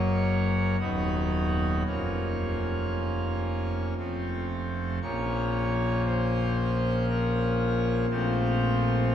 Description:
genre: classical, chorale-style piece for pipe organ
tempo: 56-60 BPM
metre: 3/4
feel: rubato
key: Bb minor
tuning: A4 = 441 Hz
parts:
  - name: pipe organ, full organ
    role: solo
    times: 0.0-9.1 s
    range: D#1 to Db5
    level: -25 LUFS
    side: equal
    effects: none
room: wet cathedral reverb, RT60 4.7 s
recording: small room ambience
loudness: -25 LUFS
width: side -9 dB against mid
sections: 0.0-9.1 A section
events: none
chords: 0.0 Gb; 0.8 B/D#; 1.9 Bbm/F; 4.0 F; 5.0 Bbm; 8.1 F/Bb

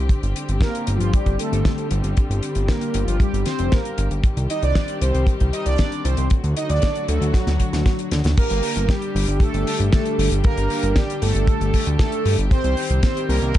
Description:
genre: italo disco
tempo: 116 BPM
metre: 4/4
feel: straight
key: G minor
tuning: A4 = 440 Hz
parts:
  - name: dark chamber string section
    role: sustained chords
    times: 0.0-13.6 s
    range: D3 to G4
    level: -28 LUFS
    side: left 1 dB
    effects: none
  - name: fat analog bass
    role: bass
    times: 0.0-13.5 s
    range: F1 to G2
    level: -20 LUFS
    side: equal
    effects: none
  - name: damped 70s drum kit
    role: drums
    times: 0.1-13.6 s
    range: crash cymbal, hi-hat, snare drum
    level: -28 LUFS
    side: left 2 dB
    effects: none
  - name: kick drum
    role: drums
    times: 0.1-13.6 s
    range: none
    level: -18 LUFS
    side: equal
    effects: none
  - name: analog synth brass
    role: melody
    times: 0.6-13.6 s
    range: F3 to Eb5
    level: -25 LUFS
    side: right 1 dB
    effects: chorus, ping-pong delay
room: little or no reverb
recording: dark, warm production, nothing above 10.5 kHz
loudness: -18 LUFS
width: side -13 dB against mid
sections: 0.0-8.4 A section; 8.4-13.6 B section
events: drum fill 7.3-8.4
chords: 0.1 Gmadd9; 4.2 Cm; 6.3 D; 8.4 Gmadd9; 12.5 Cm

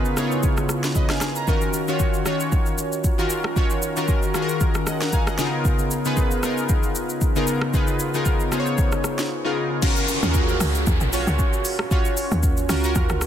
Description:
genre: amapiano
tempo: 115 BPM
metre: 4/4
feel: swing 55% on 16ths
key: Eb minor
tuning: A4 = 445 Hz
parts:
  - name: glassy digital keys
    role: accompaniment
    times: 0.0-13.3 s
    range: Db3 to Bb5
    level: -23 LUFS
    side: equal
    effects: chorus
  - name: afro-pop drum kit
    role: drums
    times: 0.1-13.3 s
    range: crash cymbal, hi-hat, kick drum, rim click, shaker, snare drum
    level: -22 LUFS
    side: equal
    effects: soft clipping on snare
  - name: downlifter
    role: sound effects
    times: 9.8-13.3 s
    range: none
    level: -30 LUFS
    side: left 1 dB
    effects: none
  - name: tight log drum bass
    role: bass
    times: 10.2-13.3 s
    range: Bb1 to Eb2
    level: -22 LUFS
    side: equal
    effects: none
room: little or no reverb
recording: dense, heavily limited modern master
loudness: -19 LUFS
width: side -10 dB against mid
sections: 0.0-9.8 A section; 9.8-13.3 B section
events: break 9.3-9.8; drop 9.8-13.3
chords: 0.0 Db13; 1.5 Ebm9; 5.4 Db13; 9.8 Ebm9

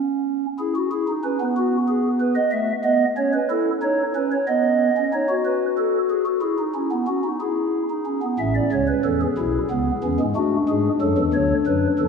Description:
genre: classical, baroque-style 3-part fugue for pipe organ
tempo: 61 BPM (dotted quarters)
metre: 12/8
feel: straight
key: A major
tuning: A4 = 440 Hz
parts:
  - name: pipe organ, stopped flute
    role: solo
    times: 0.0-12.1 s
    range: A1 to E5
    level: -19 LUFS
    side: equal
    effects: none
room: wet church reverb, RT60 3.3 s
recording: minimal, uncompressed stereo recording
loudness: -19 LUFS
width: side -6 dB against mid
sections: 0.0-8.4 A section; 8.4-12.1 B section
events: none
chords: 0.0 N.C.; 0.6 E; 2.5 Aadd9; 4.5 B; 6.4 E; 8.4 A; 10.4 Bm7 (rootless)

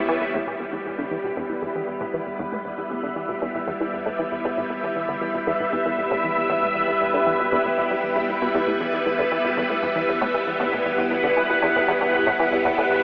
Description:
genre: ambient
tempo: 117 BPM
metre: 4/4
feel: straight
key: E minor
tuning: A4 = 441 Hz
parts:
  - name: string machine, full ensemble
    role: sustained chords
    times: 0.0-13.0 s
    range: G3 to F#5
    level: -24 LUFS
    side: equal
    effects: ensemble chorus
  - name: tight sequenced synth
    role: riff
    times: 0.1-13.0 s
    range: E2 to G3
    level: -30 LUFS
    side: equal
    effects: chorus, phaser, tape echo
room: wet huge ambient reverb, RT60 8.2 s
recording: telephone sound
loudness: -23 LUFS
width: mono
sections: 0.3-13.0 A section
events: none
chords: 0.3 Em

